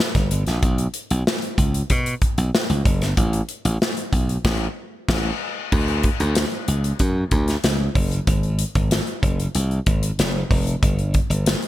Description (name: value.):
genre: polished 1980s jazz-funk pop.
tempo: 94 BPM.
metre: 4/4.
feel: straight.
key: D major.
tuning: A4 = 441 Hz.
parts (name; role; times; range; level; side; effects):
modern studio drum kit; drums; 0.0-11.7 s; crash cymbal, hi-hat, kick drum, snare drum; -21 LUFS; equal; none.
glassy slap bass; bass; 0.1-11.5 s; F1 to B2; -21 LUFS; equal; none.
room: little or no reverb.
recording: none.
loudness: -19 LUFS.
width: side -14 dB against mid.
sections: 0.0-5.7 A section; 5.7-11.7 B section.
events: band accent 4.4-5.7.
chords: none.